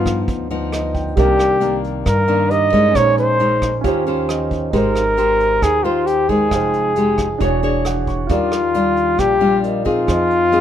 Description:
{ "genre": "bossa nova", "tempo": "135 BPM", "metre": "4/4", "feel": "straight", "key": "Eb major", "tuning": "A4 = 440 Hz", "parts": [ { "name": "mellow flugelhorn", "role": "melody", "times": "0.0-10.6 s", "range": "F4 to Eb5", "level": "-16 LUFS", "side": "equal", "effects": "none" }, { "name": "nylon-string guitar", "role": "accompaniment", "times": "0.0-10.6 s", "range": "G2 to C#5", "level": "-20 LUFS", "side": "left 3 dB", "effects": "none" }, { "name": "warm grand piano", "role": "accompaniment", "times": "0.0-10.6 s", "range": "Db4 to D6", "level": "-24 LUFS", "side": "right 6 dB", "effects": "none" }, { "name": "upright bass", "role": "bass", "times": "0.0-10.6 s", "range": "E1 to G2", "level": "-24 LUFS", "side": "right 1 dB", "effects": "none" }, { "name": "vintage brush drum kit", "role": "drums", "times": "0.1-10.6 s", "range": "hi-hat, kick drum, rim click", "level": "-27 LUFS", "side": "right 2 dB", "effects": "none" } ], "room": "light reverb", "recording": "minimal, uncompressed stereo recording", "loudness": "-14 LUFS", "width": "side -10 dB against mid", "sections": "0.0-10.6 A section", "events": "grand piano fill 0.5-1.2, 4.1-4.7, 7.6-8.3", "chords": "0.0 G7b13; 1.2 Cm9; 3.0 Bbm11; 3.8 Eb13; 4.7 Abmaj7; 6.5 Fm9; 7.4 E13; 8.3 Ebmaj9; 10.1 Fm7" }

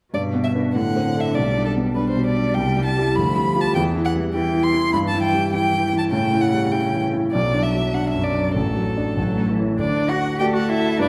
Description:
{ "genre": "quick classical-period movement for piano quartet", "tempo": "100 BPM", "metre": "2/4", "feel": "straight", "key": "G major, D major from 4.9 s", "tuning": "A4 = 441 Hz", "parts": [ { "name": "rich violin", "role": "melody", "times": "0.1-11.1 s", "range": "A4 to C6", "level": "-27 LUFS", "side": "equal", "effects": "none" }, { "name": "rich cello", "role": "second line", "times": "0.1-11.1 s", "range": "B2 to G4", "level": "-28 LUFS", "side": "equal", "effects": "none" }, { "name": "warm concert grand piano", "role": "accompaniment", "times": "0.1-11.1 s", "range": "A1 to D5", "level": "-23 LUFS", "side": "equal", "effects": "none" }, { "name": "warm violin", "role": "second line", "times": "10.4-11.1 s", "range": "A4 to B4", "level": "-29 LUFS", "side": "equal", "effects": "none" } ], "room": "wet recital hall reverb, RT60 1.6 s", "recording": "none", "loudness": "-20 LUFS", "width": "mono", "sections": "0.1-9.8 A section; 9.8-11.1 B section", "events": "none", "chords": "0.1 G; 0.8 D7/A; 1.4 G/B; 2.6 C; 3.2 G7/D; 3.7 Em; 4.9 Em/G; 6.1 A7; 7.3 Bm; 8.6 D/A; 9.2 A; 9.8 D" }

